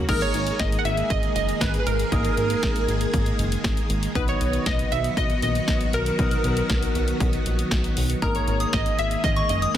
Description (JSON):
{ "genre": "synth-pop", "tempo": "118 BPM", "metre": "4/4", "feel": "straight", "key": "unclear", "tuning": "A4 = 440 Hz", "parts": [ { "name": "soft electric-piano-like synth keys", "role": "accompaniment", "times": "0.0-9.8 s", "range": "A#3 to D#5", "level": "-32 LUFS", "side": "left 3 dB", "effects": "chorus" }, { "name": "string machine, violins", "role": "sustained chords", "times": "0.0-9.8 s", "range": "D#3 to G#4", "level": "-29 LUFS", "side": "equal", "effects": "ensemble chorus" }, { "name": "funky polysynth comp", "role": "melody", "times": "0.1-9.8 s", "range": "A#4 to F#5", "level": "-26 LUFS", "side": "right 1 dB", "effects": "chorus, digital delay" }, { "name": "chorused synth bass", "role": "bass", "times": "0.1-9.8 s", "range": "F#1 to B1", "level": "-27 LUFS", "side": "equal", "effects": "none" }, { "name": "house drum kit", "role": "drums", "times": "0.1-9.8 s", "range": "crash cymbal, hi-hat, kick drum, snare drum", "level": "-25 LUFS", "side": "equal", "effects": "none" }, { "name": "soft synth bell", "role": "second line", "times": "8.2-9.7 s", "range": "A#5 to D#6", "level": "-28 LUFS", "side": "left 2 dB", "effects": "chorus, phaser, digital delay" } ], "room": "light reverb, digital ambience", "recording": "dense, heavily limited modern master", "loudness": "-20 LUFS", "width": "side -11 dB against mid", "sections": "0.1-9.8 A section", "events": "none", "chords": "0.1 G#sus2; 4.2 B; 8.2 G#sus2", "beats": "| 0.09 0.59 1.10 1.61 | 2.12 2.63 3.14 3.65 | 4.16 4.66 5.17 5.68 | 6.19 6.70 7.21 7.71 | 8.22 8.73 9.24 9.75" }